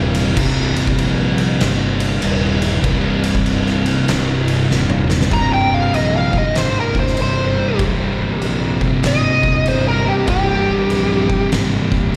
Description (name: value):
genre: stoner and doom metal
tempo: 97 BPM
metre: 4/4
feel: swing 64% on 8ths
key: C minor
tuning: A4 = 440 Hz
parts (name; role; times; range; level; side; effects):
- thick fuzz guitar; riff; 0.0-12.2 s; C2 to C3; -23 LUFS; equal; distortion
- thick fuzz guitar; riff; 0.0-12.2 s; C2 to C3; -23 LUFS; equal; distortion
- fuzz fingered electric bass; bass; 0.0-12.1 s; C1 to Bb1; -24 LUFS; equal; overdrive
- oversized low-tuned drum kit; drums; 0.1-12.0 s; crash cymbal, kick drum, ride cymbal, snare drum, toms; -24 LUFS; equal; none
- fuzz lead guitar; melody; 5.3-11.5 s; G4 to Bb5; -22 LUFS; equal; wah, distortion, tape echo
room: little or no reverb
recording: live gig heard through the venue's PA, recital hall reverb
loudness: -17 LUFS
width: mono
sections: 0.0-5.3 A section; 5.3-12.2 B section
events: drum fill 4.7-5.3; lead electric guitar solo 5.3-12.2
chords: 0.0 Cm; 5.3 C5